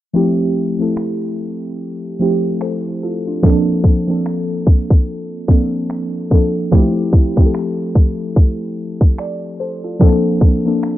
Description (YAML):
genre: contemporary R&B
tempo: 73 BPM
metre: 4/4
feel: swing 58% on 16ths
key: F major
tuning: A4 = 441 Hz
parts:
  - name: muted felt-like synth keys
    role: accompaniment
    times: 0.1-11.0 s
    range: F3 to D5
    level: -17 LUFS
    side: equal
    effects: chorus
  - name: trap drum kit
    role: drums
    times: 1.0-11.0 s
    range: finger snaps, kick drum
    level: -11 LUFS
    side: equal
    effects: none
room: little or no reverb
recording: low-pass filter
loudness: -13 LUFS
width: side -14 dB against mid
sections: 0.1-11.0 A section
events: none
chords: 0.1 Fmaj7; 3.4 Bbmaj7; 6.7 Fmaj7; 10.0 Bbmaj7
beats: | 0.15 0.97 1.79 2.61 | 3.43 4.26 5.08 5.90 | 6.72 7.54 8.37 9.19 | 10.01 10.83